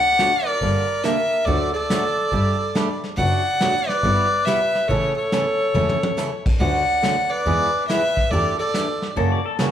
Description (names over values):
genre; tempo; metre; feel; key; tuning
country, western swing; 140 BPM; 4/4; swing 66% on 8ths; D major; A4 = 440 Hz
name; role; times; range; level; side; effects
clear fiddle; melody; 0.0-9.1 s; C#5 to F#5; -20 LUFS; equal; none
breathy clarinet; second line; 0.0-9.1 s; A4 to D5; -28 LUFS; equal; none
picked acoustic archtop guitar; accompaniment; 0.2-9.7 s; C#3 to A4; -26 LUFS; right 1 dB; none
vintage brush drum kit; drums; 0.2-9.7 s; brushed snare drum, crash cymbal, hi-hat, kick drum, snare drum, toms; -26 LUFS; equal; none
dark double bass; bass; 0.6-9.2 s; E1 to F#2; -24 LUFS; equal; none
pedal steel guitar; second line; 9.2-9.7 s; F#4 to D5; -25 LUFS; left 9 dB; none
room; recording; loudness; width
moderate large studio reverb, RT60 1.3 s; band playing live in one room; -18 LUFS; side -10 dB against mid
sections
0.0-9.7 A section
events
drum fill 5.8-6.2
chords
0.0 D; 0.6 Gmadd9; 1.5 D; 2.3 Gsus2; 3.2 Dmaj7; 4.0 G6; 4.9 A; 6.6 Dmaj7; 7.5 E; 8.3 A7sus4/E; 9.2 F#7